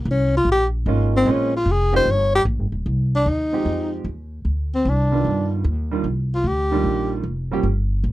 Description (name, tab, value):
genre	jazz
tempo	150 BPM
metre	4/4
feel	swing 67% on 8ths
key	unclear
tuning	A4 = 436 Hz
part	breathy tenor saxophone	melody	0.0-7.1 s	Bb3 to Db5	-20 LUFS	left 1 dB	none
part	upright bass	bass	0.0-8.1 s	Eb1 to G2	-21 LUFS	equal	none
part	clear concert grand piano	accompaniment	0.9-7.6 s	Eb3 to G4	-24 LUFS	right 5 dB	none
room	light reverb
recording	dark, warm production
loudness	-18 LUFS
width	side -16 dB against mid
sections	0.0-2.9 A section; 2.9-8.1 B section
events	tenor saxophone solo 0.0-2.9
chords	0.0 Db69; 1.3 Bbm7; 2.1 Eb; 2.9 Fm7; 4.5 Cmadd9; 5.3 G7b13; 6.0 Cm11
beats	0.07 0.47 0.86 | 1.26 1.66 2.06 2.46 | 2.86 3.26 3.65 4.05 | 4.45 4.85 5.25 5.65 | 6.05 6.45 6.85 7.25 | 7.64 8.04